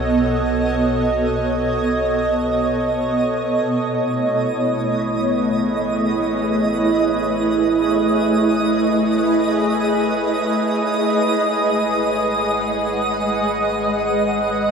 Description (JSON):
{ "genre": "ambient", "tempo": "free time", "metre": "none", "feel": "none", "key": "unclear", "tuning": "A4 = 440 Hz", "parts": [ { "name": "shimmering ambient pad", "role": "sustained chords", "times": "0.0-14.7 s", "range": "B2 to F#5", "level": "-18 LUFS", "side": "right 1 dB", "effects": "chorus, built-in reverb, shimmer reverb" }, { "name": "round analog bass", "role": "bass", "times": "0.0-14.7 s", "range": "G#1 to B1", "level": "-34 LUFS", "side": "left 1 dB", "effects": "none" }, { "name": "twinkling granular texture", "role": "texture", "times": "0.0-14.7 s", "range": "D#5 to D#6", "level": "-24 LUFS", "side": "right 2 dB", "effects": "built-in reverb, shimmer reverb" } ], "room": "wet huge ambient reverb, RT60 7.7 s", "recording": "studio reverb", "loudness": "-17 LUFS", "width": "side -6 dB against mid", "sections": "0.0-14.7 A section", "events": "fade-in on synth texture 0.0-14.7; fade-out on analog synth bass 0.0-14.7", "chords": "0.0 B9; 3.7 Amaj9; 10.9 G#m7", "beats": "free time" }